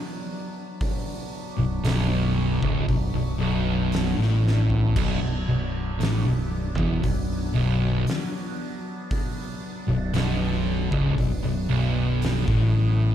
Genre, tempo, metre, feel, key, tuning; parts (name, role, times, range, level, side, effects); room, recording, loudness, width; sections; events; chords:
stoner and doom metal; 58 BPM; 4/4; straight; B minor; A4 = 440 Hz
overtone-sweeping drone; sustained chords; 0.0-13.1 s; F#3 to D4; -35 LUFS; left 1 dB; chorus, built-in reverb, phaser
oversized low-tuned drum kit; drums; 0.8-12.7 s; crash cymbal, hi-hat, kick drum, snare drum, toms; -30 LUFS; equal
fuzz guitar; riff; 1.6-13.1 s; B1 to A2; -26 LUFS; right 6 dB; distortion
thick fuzz guitar; riff; 1.6-13.1 s; B1 to A2; -25 LUFS; left 5 dB; distortion
growling fingered electric bass; bass; 1.6-13.1 s; B0 to A1; -28 LUFS; equal; overdrive, tube saturation
small room ambience; dark, warm production; -22 LUFS; side -10 dB against mid
0.0-13.1 A section
drum fill 4.4-5.0
0.0 Bm